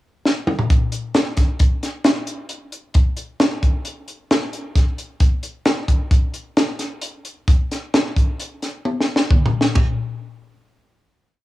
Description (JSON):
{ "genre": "rock", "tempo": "132 BPM", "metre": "5/4", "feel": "straight", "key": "none", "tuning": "none", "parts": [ { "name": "compact cocktail drum kit", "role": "drums", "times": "0.3-9.9 s", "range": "hi-hat, kick drum, ride cymbal, snare drum, toms", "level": "-17 LUFS", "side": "equal", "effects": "cassette tape" } ], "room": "moderate spring reverb, RT60 1.6 s", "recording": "home recording on cassette, small room ambience", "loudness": "-17 LUFS", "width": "side -17 dB against mid", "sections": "0.0-0.7 pickup bar; 0.7-9.8 A section; 9.8-11.4 final hit", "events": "drum fill 0.3-0.7, 8.8-9.8", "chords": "none" }